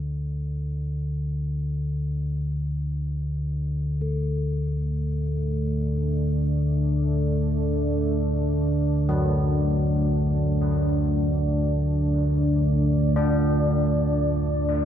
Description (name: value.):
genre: dark ambient drone.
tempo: free time.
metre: none.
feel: none.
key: D major.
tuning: A4 = 440 Hz.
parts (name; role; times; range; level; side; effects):
deep rumbling drone; drone; 0.0-14.8 s; D2 to D3; -23 LUFS; equal; built-in reverb.
bronze singing bowl; texture; 0.0-14.8 s; A3 to A4; -40 LUFS; left 4 dB; none.
deep dark ambient pad; sustained chords; 4.9-14.8 s; A3 to D5; -27 LUFS; right 1 dB; chorus, built-in reverb.
old church bells; arpeggios; 9.1-14.8 s; F#3 to D4; -30 LUFS; left 2 dB; analog delay.
room: moderate plate reverb, RT60 2.7 s.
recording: echo-heavy mix.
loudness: -22 LUFS.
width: side -9 dB against mid.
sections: 0.0-14.8 A section.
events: fade-in on singing bowl 0.0-14.8.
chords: 0.0 D5.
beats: free time.